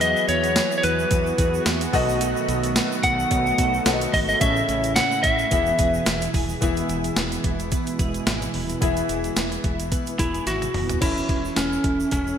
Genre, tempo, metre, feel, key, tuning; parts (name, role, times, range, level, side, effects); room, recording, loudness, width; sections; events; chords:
1980s-style pop; 109 BPM; 4/4; swing 55% on 16ths; E major; A4 = 441 Hz
lightly driven lead guitar; melody; 0.0-6.3, 10.2-12.4 s; C#4 to F#5; -23 LUFS; equal
warm grand piano; accompaniment; 0.0-12.4 s; A2 to E5; -28 LUFS; left 3 dB; wide subtle chorus
brassy analog pad; sustained chords; 0.0-11.0 s; B2 to G#4; -30 LUFS; right 2 dB; chorus
twelve-string electric guitar; riff; 0.0-12.4 s; F#3 to A4; -31 LUFS; right 4 dB; ensemble chorus
woody fretless electric bass; bass; 0.0-12.3 s; D#1 to E2; -30 LUFS; equal
clean 12-bit digital drum machine; drums; 0.0-12.3 s; crash cymbal, hi-hat, kick drum, snare drum, tambourine, toms; -25 LUFS; equal; gated reverb
tube shaker; percussion; 0.0-12.4 s; -38 LUFS; right 7 dB
moderate lush hall reverb, RT60 2.6 s; bright 1980s-style digital production; -20 LUFS; side -8 dB against mid
0.0-6.6 A section; 6.6-11.0 B section; 11.0-12.4 C section
drum fill 10.5-11.0
0.0 Eadd9; 1.9 B7; 4.4 Amaj7; 5.5 E; 11.0 A/E